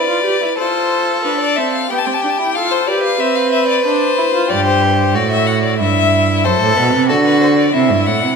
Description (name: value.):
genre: classical, baroque-style fugue for string quartet.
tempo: 92 BPM.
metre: 4/4.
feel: straight.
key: C major.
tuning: A4 = 440 Hz.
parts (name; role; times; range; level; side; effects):
rich violin; melody; 0.0-8.4 s; A4 to A5; -17 LUFS; left 7 dB; none.
rich violin; second line; 0.0-8.4 s; E4 to B4; -18 LUFS; left 1 dB; none.
warm viola; accompaniment; 0.0-4.5 s; B3 to G4; -20 LUFS; right 4 dB; none.
rich cello; bass; 4.5-8.4 s; F#2 to D3; -14 LUFS; right 4 dB; none.
room: moderate scoring stage reverb, RT60 1.9 s.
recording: none.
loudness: -12 LUFS.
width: side -5 dB against mid.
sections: 0.0-8.4 A section.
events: none.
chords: 0.0 C (rootless); 0.6 Dm7/F; 1.9 G7; 3.2 C; 4.5 G5; 5.8 Am7/G; 7.1 D7.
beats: 0.58 1.25 | 1.91 2.56 3.20 3.85 | 4.50 5.15 5.80 6.45 | 7.09 7.74.